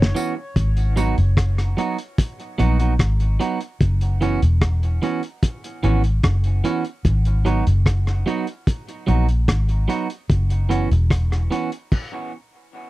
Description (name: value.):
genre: dub reggae.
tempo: 74 BPM.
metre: 4/4.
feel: straight.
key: G# minor.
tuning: A4 = 440 Hz.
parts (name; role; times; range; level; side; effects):
vintage muted fingered electric bass; bass; 0.0-11.5 s; E1 to A#1; -18 LUFS; equal; none.
cloth-damped thuddy drum kit; drums; 0.0-12.1 s; crash cymbal, hi-hat, kick drum, rim click, snare drum; -20 LUFS; equal; none.
clean electric guitar; accompaniment; 0.1-11.7 s; E3 to F#4; -24 LUFS; right 5 dB; dub echo.
tambourine; percussion; 0.2-1.2 s; none; -40 LUFS; right 5 dB; dub echo.
room: little or no reverb.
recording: dry, close 1970s-style studio recording.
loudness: -18 LUFS.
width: side -17 dB against mid.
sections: 0.6-12.9 A section.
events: drum fill 0.0-0.6; part muted 0.6-12.9; stop 11.9-12.9.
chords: 0.0 F#7sus4; 0.6 G#m7; 3.8 F#7sus4; 7.0 G#m7; 10.3 F#7sus4.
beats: | 0.56 1.37 2.18 2.99 | 3.80 4.62 5.43 6.24 | 7.05 7.86 8.67 9.48 | 10.29 11.11 11.92.